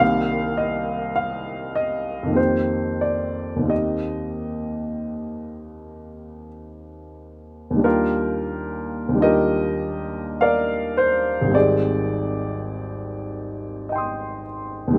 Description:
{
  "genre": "classical, impressionist solo piano",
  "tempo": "41-54 BPM",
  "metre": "3/4",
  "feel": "rubato",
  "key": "Eb major",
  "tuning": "A4 = 440 Hz",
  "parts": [
    { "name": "warm baby grand piano", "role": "solo", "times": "0.0-15.0 s", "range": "Ab1 to Eb6", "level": "-23 LUFS", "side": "equal", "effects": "none" }
  ],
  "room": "moderate studio reverb, RT60 0.5 s",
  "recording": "none",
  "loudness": "-23 LUFS",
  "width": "mono",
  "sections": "0.0-7.8 A section; 7.8-15.0 A section",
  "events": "none",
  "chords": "0.0 Cm7; 2.4 F9sus4; 3.7 Eb6; 7.8 Ebmaj9; 11.5 Abmaj7#11"
}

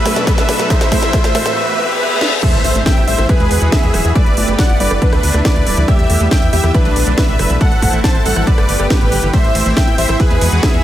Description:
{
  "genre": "uplifting trance",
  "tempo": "139 BPM",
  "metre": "4/4",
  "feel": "straight",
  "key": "A dorian",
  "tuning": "A4 = 440 Hz",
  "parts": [
    { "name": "dense compressed supersaw", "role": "melody", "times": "0.0-10.8 s", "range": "D4 to A5", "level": "-18 LUFS", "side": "equal", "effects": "sidechain pumping, analog delay" },
    { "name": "lush unison pad", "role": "sustained chords", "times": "0.0-10.8 s", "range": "A2 to E5", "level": "-24 LUFS", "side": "equal", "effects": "chorus, sidechain pumping" },
    { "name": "riser, reverse cymbal and impact", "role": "sound effects", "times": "0.0-4.2 s", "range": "none", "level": "-22 LUFS", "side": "left 1 dB", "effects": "none" },
    { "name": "wide unison pluck", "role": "arpeggios", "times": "0.1-10.8 s", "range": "G#2 to E4", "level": "-23 LUFS", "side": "right 3 dB", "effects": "sidechain pumping, analog delay" },
    { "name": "techno drum kit", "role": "drums", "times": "0.1-10.8 s", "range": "crash cymbal, hi-hat, ride cymbal, rim click, snare drum", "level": "-21 LUFS", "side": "equal", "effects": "overdrive, small room ambience" },
    { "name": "electronic kick drum", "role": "drums", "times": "0.3-10.7 s", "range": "none", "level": "-14 LUFS", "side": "equal", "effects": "overdrive, small room ambience" },
    { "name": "plucky unison lead", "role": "second line", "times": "2.4-10.8 s", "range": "B4 to A5", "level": "-23 LUFS", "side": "equal", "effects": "analog chorus, sidechain pumping, analog delay" },
    { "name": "tight sequencer bass", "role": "bass", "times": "2.5-10.8 s", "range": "D1 to E2", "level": "-17 LUFS", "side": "equal", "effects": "sidechain pumping" }
  ],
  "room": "moderate huge ambient reverb, RT60 4.7 s",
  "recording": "dreamy mix soaked in reverb, faint mains hum",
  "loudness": "-11 LUFS",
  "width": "side -12 dB against mid",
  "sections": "0.0-2.4 A section; 2.4-10.8 B section",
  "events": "build-up 0.0-2.4; drum fill 0.0-1.6, 2.2; riser 0.0-2.4; filter sweep on synth arpeggio sound 0.0-2.4; reverse cymbal 1.6-2.4; drop 2.4-10.8; impact 2.4-4.2",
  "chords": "0.0 Bm7; 0.7 Am; 1.6 N.C.; 2.4 Am; 3.3 Eadd9; 4.2 Gadd9; 5.0 Dsus2; 5.9 Em; 6.7 Bm7; 7.6 Am; 8.5 Gadd9; 9.3 Am; 10.2 Eadd9"
}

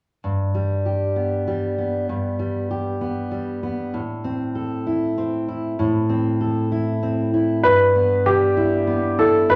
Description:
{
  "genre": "six-eight pop ballad",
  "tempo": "65 BPM (dotted quarters)",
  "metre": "6/8",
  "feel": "straight",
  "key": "G major",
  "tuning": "A4 = 440 Hz",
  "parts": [
    { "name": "fingerpicked steel-string acoustic guitar", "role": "accompaniment", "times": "0.2-9.6 s", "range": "G2 to A4", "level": "-23 LUFS", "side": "equal", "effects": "none" },
    { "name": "clear grand piano", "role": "melody", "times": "7.6-9.6 s", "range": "G4 to B4", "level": "-18 LUFS", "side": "equal", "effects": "none" }
  ],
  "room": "wet large studio reverb, RT60 0.9 s",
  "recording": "none",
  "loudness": "-21 LUFS",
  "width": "mono",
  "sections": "0.2-7.6 A section; 7.6-9.6 B section",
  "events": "none",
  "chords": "0.2 G; 3.9 Am; 7.6 G6"
}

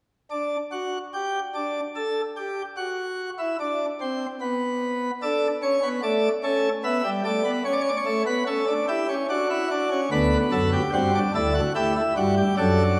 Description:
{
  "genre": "classical, baroque-style 3-part fugue for pipe organ",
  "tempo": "73 BPM",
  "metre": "3/4",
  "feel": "straight",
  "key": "unclear",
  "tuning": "A4 = 440 Hz",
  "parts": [
    { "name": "pipe organ, plenum", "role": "solo", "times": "0.3-13.0 s", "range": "D2 to E5", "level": "-25 LUFS", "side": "equal", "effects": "none" }
  ],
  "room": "wet church reverb, RT60 2.8 s",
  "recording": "none",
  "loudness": "-25 LUFS",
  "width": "mono",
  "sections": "0.3-13.0 A section",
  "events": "none",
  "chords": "0.3 N.C.; 5.2 D5; 6.8 Em7; 7.7 A7; 9.3 D; 10.1 G/D; 11.7 A5"
}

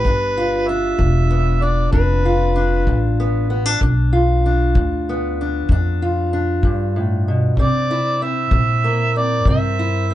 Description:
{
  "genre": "acoustic country blues, solo or duo",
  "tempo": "64 BPM (dotted quarters)",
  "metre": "12/8",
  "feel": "straight",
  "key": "G mixolydian",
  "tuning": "A4 = 440 Hz",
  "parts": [
    { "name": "overdriven harmonica", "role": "melody", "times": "0.0-10.1 s", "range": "B4 to E5", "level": "-21 LUFS", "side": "right 2 dB", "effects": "none" },
    { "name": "fingerpicked steel-string acoustic guitar", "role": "accompaniment", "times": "0.0-10.1 s", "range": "G2 to F4", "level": "-21 LUFS", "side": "left 1 dB", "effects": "none" },
    { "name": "upright bass", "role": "bass", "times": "0.0-10.1 s", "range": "E1 to C3", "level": "-19 LUFS", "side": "equal", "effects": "none" },
    { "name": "kick drum", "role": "drums", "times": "0.0-9.6 s", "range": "none", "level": "-21 LUFS", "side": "equal", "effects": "none" }
  ],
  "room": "wet booth ambience, RT60 0.2 s",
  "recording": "heard from further back in the room, nothing above 11.0 kHz",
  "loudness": "-15 LUFS",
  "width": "side -13 dB against mid",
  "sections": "0.0-10.1 A section",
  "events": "none",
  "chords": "0.0 G7; 7.6 C7"
}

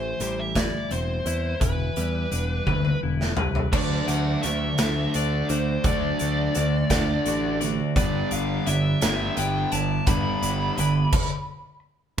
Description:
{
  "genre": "quiet-loud alternative rock",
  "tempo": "57 BPM (dotted quarters)",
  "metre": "6/8",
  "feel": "straight",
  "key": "unclear",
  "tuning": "A4 = 440 Hz",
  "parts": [
    { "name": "fuzz lead guitar", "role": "melody", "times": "0.0-11.8 s", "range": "B4 to B5", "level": "-29 LUFS", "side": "right 1 dB", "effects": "distortion" },
    { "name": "twelve-string electric guitar", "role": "arpeggios", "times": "0.0-11.1 s", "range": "A2 to D5", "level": "-31 LUFS", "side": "left 7 dB", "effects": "none" },
    { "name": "picked electric bass", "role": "bass", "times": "0.0-11.0 s", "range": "E1 to E2", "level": "-28 LUFS", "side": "equal", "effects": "none" },
    { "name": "big rock drum kit", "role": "drums", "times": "0.2-11.3 s", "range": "crash cymbal, hi-hat, kick drum, snare drum, toms", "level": "-26 LUFS", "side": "equal", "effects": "none" },
    { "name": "fuzz guitar", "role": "riff", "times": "3.7-11.1 s", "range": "G2 to D4", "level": "-26 LUFS", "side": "right 2 dB", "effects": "distortion" }
  ],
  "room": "light reverb",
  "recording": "band playing live in one room",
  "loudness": "-22 LUFS",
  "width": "side -9 dB against mid",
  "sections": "0.0-3.7 A section; 3.7-12.2 B section",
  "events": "drum fill 2.7-3.7; stop 11.1-12.2",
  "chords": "0.0 Am7; 1.6 Em7; 3.7 D; 8.0 G6"
}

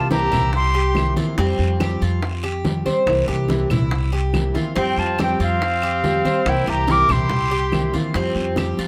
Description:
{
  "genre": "latin, Cuban son and guajira",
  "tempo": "142 BPM",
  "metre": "4/4",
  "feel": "straight",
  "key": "unclear",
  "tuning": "A4 = 440 Hz",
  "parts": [
    { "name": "silver concert flute", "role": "melody", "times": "0.0-1.1, 4.8-8.0 s", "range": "F5 to D6", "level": "-23 LUFS", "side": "equal", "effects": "none" },
    { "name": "bright trumpet", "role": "second line", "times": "0.0-1.1, 4.8-8.0 s", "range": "C4 to Bb4", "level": "-31 LUFS", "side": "equal", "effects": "none" },
    { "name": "nylon-string guitar", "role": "accompaniment", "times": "0.0-8.9 s", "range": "C3 to G4", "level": "-28 LUFS", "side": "equal", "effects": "none" },
    { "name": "Cuban tres", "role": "arpeggios", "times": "0.0-8.9 s", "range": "C4 to C5", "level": "-27 LUFS", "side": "equal", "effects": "none" },
    { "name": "upright bass", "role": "bass", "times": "0.0-8.9 s", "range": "C2 to F2", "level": "-25 LUFS", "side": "equal", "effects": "none" },
    { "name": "bongos", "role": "percussion", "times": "0.1-8.9 s", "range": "none", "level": "-33 LUFS", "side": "equal", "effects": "none" },
    { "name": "congas", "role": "percussion", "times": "0.1-8.9 s", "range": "none", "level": "-28 LUFS", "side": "equal", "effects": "none" },
    { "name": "guiro", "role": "percussion", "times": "0.1-8.9 s", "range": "none", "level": "-39 LUFS", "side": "equal", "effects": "none" },
    { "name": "claves", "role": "percussion", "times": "0.3-8.8 s", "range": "none", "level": "-35 LUFS", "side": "equal", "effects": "none" }
  ],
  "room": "light reverb",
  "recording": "none",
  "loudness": "-20 LUFS",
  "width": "mono",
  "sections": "0.0-8.9 A section",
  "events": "none",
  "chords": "0.0 C7; 1.4 Fsus2; 3.1 C7; 4.8 Fsus2; 6.5 C7; 8.2 Fsus2"
}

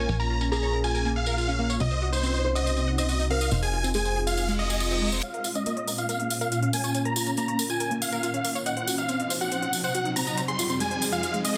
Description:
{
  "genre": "uplifting trance",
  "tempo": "140 BPM",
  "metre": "4/4",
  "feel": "straight",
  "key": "Bb minor",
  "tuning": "A4 = 439 Hz",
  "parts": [
    { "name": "big supersaw lead", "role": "melody", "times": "0.0-11.6 s", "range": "C5 to C6", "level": "-32 LUFS", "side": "equal", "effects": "low-pass filter, delay" },
    { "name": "felt-muted upright piano", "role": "second line", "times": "0.0-5.1 s", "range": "Ab4 to Eb5", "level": "-36 LUFS", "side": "equal", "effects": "digital delay" },
    { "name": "shimmering ambient pad", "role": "sustained chords", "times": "0.0-11.6 s", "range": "F2 to Ab4", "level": "-34 LUFS", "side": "equal", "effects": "chorus, built-in reverb, phaser" },
    { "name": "analog pluck", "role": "arpeggios", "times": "0.0-11.6 s", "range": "Ab3 to Gb5", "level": "-35 LUFS", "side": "equal", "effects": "chorus, delay" },
    { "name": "plucky analog bass", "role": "bass", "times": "0.0-5.2 s", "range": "F1 to C2", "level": "-30 LUFS", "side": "equal", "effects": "none" },
    { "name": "tambourine", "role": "percussion", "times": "0.1-11.5 s", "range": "none", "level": "-36 LUFS", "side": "equal", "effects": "none" },
    { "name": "reverse cymbal and riser", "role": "sound effects", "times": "4.5-11.6 s", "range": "none", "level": "-38 LUFS", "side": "equal", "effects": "none" },
    { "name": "electronic hi-hat", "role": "drums", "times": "5.2-11.6 s", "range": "none", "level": "-36 LUFS", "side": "equal", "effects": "small room reverb" }
  ],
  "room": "light reverb",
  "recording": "dense, heavily limited modern master, high-pass filter, low-pass filter",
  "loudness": "-26 LUFS",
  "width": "mono",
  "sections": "0.0-5.2 A section; 5.2-11.6 B section",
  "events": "filter sweep on ambient pad 0.0-5.2; filter sweep 0.0-5.2; reverse cymbal 4.5-5.2; build-up 5.2-11.6; riser 5.2-11.6; filter sweep on supersaw synth 5.2-11.6; filter sweep on synth pluck 5.2-11.6",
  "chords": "0.0 Bbm; 1.8 Cdim; 3.5 Fm; 5.2 Bbm; 8.7 Cdim; 10.4 Fm"
}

